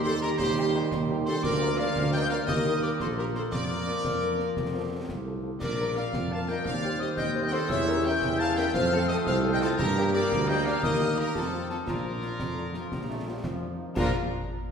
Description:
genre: military-style march for wind band.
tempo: 115 BPM (dotted quarters).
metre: 6/8.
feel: straight.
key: Bb major.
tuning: A4 = 440 Hz.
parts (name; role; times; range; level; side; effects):
bright trumpet section; melody; 0.0-14.1 s; A4 to A5; -36 LUFS; right 1 dB; none.
dark woodwind section; second line; 0.0-14.1 s; F4 to F5; -32 LUFS; left 1 dB; none.
glockenspiel with soft plastic mallets; second line; 0.0-14.2 s; A5 to A6; -36 LUFS; left 2 dB; none.
mellow hollow piccolo; second line; 0.0-14.2 s; A5 to A6; -37 LUFS; left 3 dB; none.
mellow French horn section; accompaniment; 0.0-14.1 s; F3 to C5; -35 LUFS; left 3 dB; none.
clear trombone section; sustained chords; 0.0-14.1 s; D3 to D4; -36 LUFS; right 1 dB; none.
mellow tuba; bass; 0.0-14.1 s; Bb1 to G2; -29 LUFS; right 2 dB; none.
concert snare drum, concert bass drum and clash cymbals; drums; 0.2-14.2 s; none; -36 LUFS; left 1 dB; none.
room: wet scoring stage reverb, RT60 1.8 s.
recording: heard from further back in the room.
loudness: -25 LUFS.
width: side -6 dB against mid.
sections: 0.0-14.0 A section.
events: none.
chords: 0.0 Cm/Eb; 1.4 Bb/D; 2.5 Eb; 3.5 Bb/F; 4.6 F; 5.6 Bb; 6.7 Cm/Eb; 7.7 Edim7; 8.7 F; 9.8 Gm; 10.8 Eb; 11.4 F; 11.9 Bb.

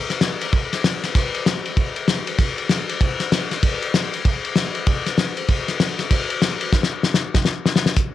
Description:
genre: rock.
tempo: 194 BPM.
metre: 4/4.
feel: swing 62% on 8ths.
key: none.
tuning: none.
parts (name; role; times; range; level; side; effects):
cloth-damped thuddy drum kit; drums; 0.1-8.1 s; hi-hat, kick drum, ride cymbal, snare drum; -18 LUFS; left 2 dB; none.
room: light reverb.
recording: 1960s-style stereo.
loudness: -18 LUFS.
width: side -13 dB against mid.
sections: 0.0-8.0 A section.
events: drum fill 6.7-8.0.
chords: none.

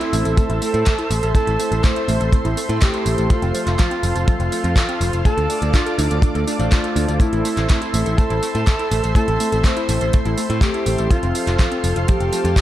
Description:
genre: italo disco.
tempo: 123 BPM.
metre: 4/4.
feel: straight.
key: A minor.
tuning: A4 = 440 Hz.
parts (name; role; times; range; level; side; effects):
mellow alto saxophone; melody; 0.0-12.6 s; E4 to C5; -24 LUFS; equal; digital delay.
lush unison pad; sustained chords; 0.0-12.6 s; A4 to D6; -26 LUFS; right 1 dB; chorus.
analog pluck; arpeggios; 0.0-12.6 s; F3 to D5; -28 LUFS; right 2 dB; chorus, digital delay.
chorused polysynth; stabs; 0.0-12.5 s; A3 to C5; -27 LUFS; left 1 dB; none.
house drum kit; drums; 0.0-12.6 s; handclaps, hi-hat, tambourine; -27 LUFS; right 1 dB; small room ambience, gated reverb.
modern bright picked electric bass; bass; 0.1-12.5 s; F1 to A2; -20 LUFS; equal; none.
kick drum; drums; 0.4-12.6 s; none; -16 LUFS; equal; small room ambience.
room: light reverb, small room ambience.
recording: none.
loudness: -16 LUFS.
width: side -13 dB against mid.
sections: 0.0-12.6 A section.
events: none.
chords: 0.0 Am; 3.3 F; 5.3 Dm; 7.2 Am; 11.1 F.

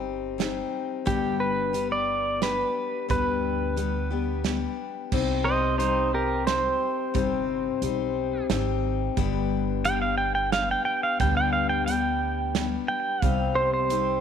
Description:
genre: honky-tonk and classic country.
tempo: 89 BPM.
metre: 3/4.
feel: straight.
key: C harmonic minor.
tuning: A4 = 441 Hz.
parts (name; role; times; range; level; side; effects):
picked steel-string acoustic guitar; accompaniment; 0.0-14.2 s; G2 to G4; -28 LUFS; left 9 dB; none.
upright bass; bass; 0.0-14.2 s; G1 to D2; -31 LUFS; right 2 dB; none.
natural country drum kit; drums; 0.4-14.1 s; crash cymbal, hi-hat, kick drum, snare drum; -30 LUFS; right 6 dB; none.
pedal steel guitar; melody; 1.1-14.2 s; Eb4 to G5; -26 LUFS; right 2 dB; slapback echo.
room: light reverb, small room ambience.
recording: 1960s-style stereo with parts hard left and right.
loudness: -23 LUFS.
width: side -8 dB against mid.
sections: 0.0-5.1 A section; 5.1-14.2 B section.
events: pedal steel guitar solo 5.1-14.2.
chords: 0.0 Cm; 1.1 G; 5.1 Cm; 9.2 G; 13.2 Cm.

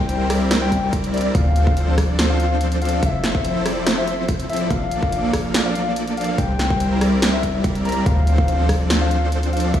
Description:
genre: future bass.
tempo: 143 BPM.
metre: 4/4.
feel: half-time.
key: unclear.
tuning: A4 = 441 Hz.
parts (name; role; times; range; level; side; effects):
soft octave-layered synth lead; melody; 0.0-9.8 s; D5 to Bb5; -26 LUFS; left 3 dB; chorus, sidechain pumping, dub echo.
supersaw chords; riff; 0.0-9.8 s; F3 to F5; -22 LUFS; equal; vintage 12-bit sampler grit, sidechain pumping.
warm 808-style bass; bass; 0.0-9.8 s; F1 to D2; -22 LUFS; equal; sidechain pumping.
big-room dance drum kit; drums; 0.1-9.8 s; hi-hat, rim click, snare drum; -24 LUFS; right 1 dB; none.
electronic kick drum; drums; 0.7-9.8 s; none; -22 LUFS; equal; none.
room: light reverb.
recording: played on a big sound system in a bare room, stone room reverb, studio reverb.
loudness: -17 LUFS.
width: side -10 dB against mid.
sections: 0.0-9.8 A section.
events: none.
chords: 0.0 C7; 1.3 Dm7; 3.0 Fmaj7; 4.7 Bbmaj7; 6.4 C7; 8.1 Dm7.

